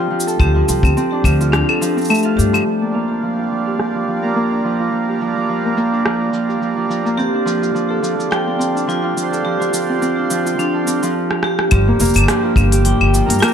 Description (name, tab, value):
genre	folktronica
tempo	106 BPM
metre	4/4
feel	swing 56% on 16ths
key	G minor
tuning	A4 = 439 Hz
part	vibraphone with hard mallets	second line	0.0-2.7, 7.2-13.5 s	D4 to G5	-21 LUFS	equal	ping-pong delay
part	Celtic harp	arpeggios	0.0-13.5 s	F3 to A4	-19 LUFS	right 1 dB	low-pass filter, tape echo
part	organic electronic drum kit	drums	0.2-13.5 s	claves, hi-hat, rim click, shaker	-21 LUFS	left 1 dB	low-pass filter on perc, low-pass filter on snare, low-pass filter on hats, low-pass filter on room
part	upright bass	bass	0.4-2.6, 11.7-13.4 s	F1 to G2	-16 LUFS	equal	none
part	kick drum	drums	0.4-1.4, 11.7-12.7 s	none	-14 LUFS	left 1 dB	none
part	mellow accordion	sustained chords	2.7-13.5 s	D3 to C5	-23 LUFS	right 4 dB	none
room	light reverb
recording	none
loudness	-14 LUFS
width	side -8 dB against mid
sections	0.0-2.7 A section; 2.7-11.7 B section; 11.7-13.5 C section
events	kick drops out 1.5-2.7; filter sweep on drum 2.7-11.7; filter sweep on harp 2.7-11.7; drum fill 11.3-11.7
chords	0.0 Dm7; 2.7 Gm7; 7.2 Dm7; 11.7 Gm7